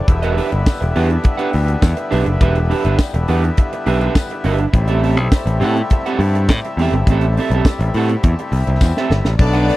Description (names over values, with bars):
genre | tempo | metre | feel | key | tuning
disco | 103 BPM | 4/4 | straight | unclear | A4 = 440 Hz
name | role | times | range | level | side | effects
accordion | sustained chords | 0.0-9.8 s | C3 to A4 | -24 LUFS | left 3 dB | none
electric guitar at the edge of break-up | accompaniment | 0.1-9.8 s | C4 to F#5 | -21 LUFS | right 5 dB | spring reverb
modern bright picked electric bass | bass | 0.1-9.7 s | E1 to A2 | -16 LUFS | equal | none
tight funk drum kit | drums | 0.1-9.8 s | crash cymbal, hi-hat, kick drum, snare drum | -14 LUFS | equal | none
tambourine | percussion | 0.7-8.9 s | none | -36 LUFS | left 11 dB | none
clear studio string section | second line | 9.4-9.8 s | D4 to D5 | -18 LUFS | left 3 dB | none
room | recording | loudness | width
little or no reverb | dry, close 1970s-style studio recording | -14 LUFS | side -17 dB against mid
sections
0.0-9.4 A section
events
drum fill 8.8-9.4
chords
0.1 Em7; 4.7 Am7